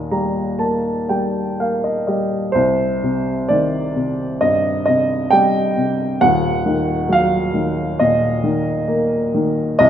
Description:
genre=classical, lyrical solo piano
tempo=60-68 BPM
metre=4/4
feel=rubato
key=C minor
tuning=A4 = 439 Hz
part: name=warm upright piano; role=solo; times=0.0-9.9 s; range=Eb1 to Bb5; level=-16 LUFS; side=equal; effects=none
room=light reverb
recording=minimal, uncompressed stereo recording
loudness=-16 LUFS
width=side -10 dB against mid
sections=0.0-2.6 A section; 2.6-9.9 B section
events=upright piano fill 0.0-2.6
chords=0.0 Eb; 2.6 Cm; 6.2 Ebm

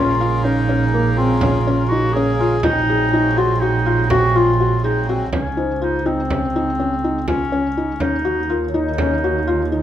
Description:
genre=contemporary instrumental, chamber music in an uneven meter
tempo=246 BPM (eighths)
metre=11/8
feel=straight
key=unclear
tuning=A4 = 442 Hz
part: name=dark clarinet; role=second line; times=0.0-9.8 s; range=C4 to Ab4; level=-21 LUFS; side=left 2 dB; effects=none
part: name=hand-pumped harmonium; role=sustained chords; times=0.0-5.3 s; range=C3 to Bb3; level=-26 LUFS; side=right 2 dB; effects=none
part: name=felt-muted upright piano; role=arpeggios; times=0.0-9.8 s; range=Bb3 to Ab4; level=-21 LUFS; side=left 2 dB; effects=none
part: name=rich double bass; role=bass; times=0.0-9.8 s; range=Bb1 to Eb2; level=-21 LUFS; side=right 4 dB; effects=none
part: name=frame drum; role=percussion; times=1.4-9.2 s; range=none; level=-25 LUFS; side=right 2 dB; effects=none
part: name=large celesta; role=texture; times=2.4-9.8 s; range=Bb4 to Ab5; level=-28 LUFS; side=left 6 dB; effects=none
room=moderate recital hall reverb, RT60 1.4 s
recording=close, detailed microphones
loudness=-16 LUFS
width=side -11 dB against mid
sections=0.0-5.3 A section; 5.3-9.8 B section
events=none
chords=0.0 Bbm7; 2.6 Ab7/Bb; 5.3 Dbmaj7sus2; 8.0 Ebm7

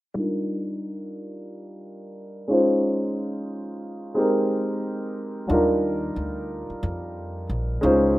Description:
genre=hip hop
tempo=90 BPM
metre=4/4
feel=swing 61% on 16ths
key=Eb major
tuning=A4 = 439 Hz
part: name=dark concert grand piano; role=accompaniment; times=0.1-8.2 s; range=Gb3 to C5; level=-23 LUFS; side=equal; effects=low-pass filter
part: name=upright bass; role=bass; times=5.5-8.2 s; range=Bb1 to F2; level=-29 LUFS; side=equal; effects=none
room=moderate studio reverb, RT60 0.6 s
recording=rough home demo mix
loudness=-23 LUFS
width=side -17 dB against mid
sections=0.2-8.2 A section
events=filter sweep on grand piano 0.2-8.2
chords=0.2 Ebmaj9; 2.5 Dbmaj9; 4.2 Abmaj9; 5.5 Ebmaj9

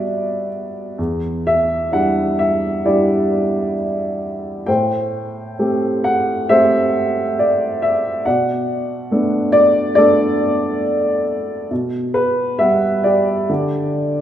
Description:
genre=classical, lyrical solo piano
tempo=64-71 BPM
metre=4/4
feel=rubato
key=E minor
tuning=A4 = 440 Hz
part: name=dark upright piano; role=solo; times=0.0-14.2 s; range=E2 to G5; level=-15 LUFS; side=equal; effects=none
room=moderate concert hall reverb, RT60 2.1 s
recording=minimal, uncompressed stereo recording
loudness=-15 LUFS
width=side -10 dB against mid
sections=0.0-14.2 A section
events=none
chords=0.0 Gmaj7/B; 1.0 Em7; 4.7 Am7; 8.3 Bm7; 11.7 Gmaj7/B; 13.5 Dsus4

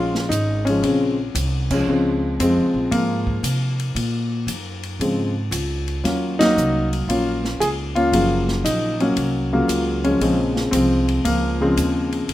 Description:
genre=jazz piano trio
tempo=115 BPM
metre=4/4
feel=swing 68% on 8ths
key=Bb minor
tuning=A4 = 440 Hz
part: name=warm concert grand piano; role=melody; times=0.0-12.3 s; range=Db3 to Ab4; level=-19 LUFS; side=left 1 dB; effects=none
part: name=upright bass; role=bass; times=0.0-12.3 s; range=Gb1 to C3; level=-24 LUFS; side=equal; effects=none
part: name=open jazz drum kit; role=drums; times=0.1-12.3 s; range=crash cymbal, hi-hat, kick drum, ride cymbal, snare drum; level=-29 LUFS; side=left 1 dB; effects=none
room=light reverb, small room reverb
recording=rough home demo mix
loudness=-18 LUFS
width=side -14 dB against mid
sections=0.0-12.3 A section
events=band accent 1.6, 6.3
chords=0.0 Bbm7; 6.0 Ebm7; 10.2 Bbm7

